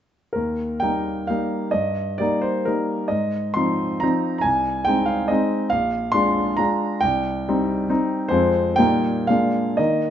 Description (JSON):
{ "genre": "classical, romantic triple-time dance for piano with dotted rhythms", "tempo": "108-148 BPM", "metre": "3/4", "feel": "rubato", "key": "Eb major", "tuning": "A4 = 440 Hz", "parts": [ { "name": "warm grand piano", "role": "solo", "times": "0.3-10.1 s", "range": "Bb1 to C6", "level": "-19 LUFS", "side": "equal", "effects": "none" } ], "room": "moderate large studio reverb, RT60 1.1 s", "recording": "nothing above 7.9 kHz", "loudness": "-19 LUFS", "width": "side -10 dB against mid", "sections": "0.3-10.1 A section", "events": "none", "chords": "0.3 Eb; 1.7 Eb/G; 3.1 Ab6; 4.4 Ab/C; 5.7 Bb7; 7.0 Cm; 8.3 Fm; 8.8 Eb/Bb; 9.3 Bb7" }